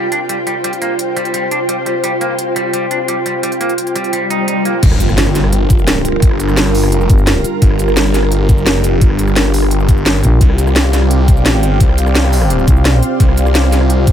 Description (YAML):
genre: dark technical drum and bass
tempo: 172 BPM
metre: 4/4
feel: straight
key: G minor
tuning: A4 = 440 Hz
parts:
  - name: dark analog pad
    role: sustained chords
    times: 0.0-14.1 s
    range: G3 to F5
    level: -20 LUFS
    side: equal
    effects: chorus, sidechain pumping
  - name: semi-hollow electric guitar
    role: arpeggios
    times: 0.0-4.8 s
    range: G3 to Eb4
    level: -20 LUFS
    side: right 1 dB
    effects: sidechain pumping, tape echo
  - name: ethereal airy pad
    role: texture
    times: 0.0-14.1 s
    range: F4 to G5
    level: -19 LUFS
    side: right 1 dB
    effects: ensemble chorus, built-in reverb, sidechain pumping
  - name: drum and bass drum kit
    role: drums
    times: 0.1-14.1 s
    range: cabasa, crash cymbal, hi-hat, rim click, snare drum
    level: -17 LUFS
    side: equal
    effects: none
  - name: swell and impact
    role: sound effects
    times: 4.2-6.2 s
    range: none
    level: -20 LUFS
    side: left 1 dB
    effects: none
  - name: snarling distorted saw bass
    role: bass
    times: 4.8-14.1 s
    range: G1 to C2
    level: -14 LUFS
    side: equal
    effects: distortion, overdrive, sidechain pumping
  - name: electronic kick drum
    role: drums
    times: 4.8-14.1 s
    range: none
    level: -10 LUFS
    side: equal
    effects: none
  - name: growling FM bass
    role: bass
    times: 7.1-7.4, 10.2-10.4, 12.7-13.0 s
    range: G1 to C2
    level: -11 LUFS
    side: equal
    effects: none
room: light reverb, digital ambience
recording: none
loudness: -10 LUFS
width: side -10 dB against mid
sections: 0.0-4.8 A section; 4.8-14.1 B section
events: swell 4.2-4.8; drop 4.8-14.1; impact 4.8-6.2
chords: 0.0 Csus4; 4.8 Gm7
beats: 0.29 | 0.64 0.99 1.34 1.69 | 2.04 2.39 2.73 3.08 | 3.43 3.78 4.13 4.48 | 4.83 5.18 5.53 5.87 | 6.22 6.57 6.92 7.27 | 7.62 7.97 8.32 8.66 | 9.01 9.36 9.71 10.06 | 10.41 10.76 11.11 11.46 | 11.80 12.15 12.50 12.85 | 13.20 13.55 13.90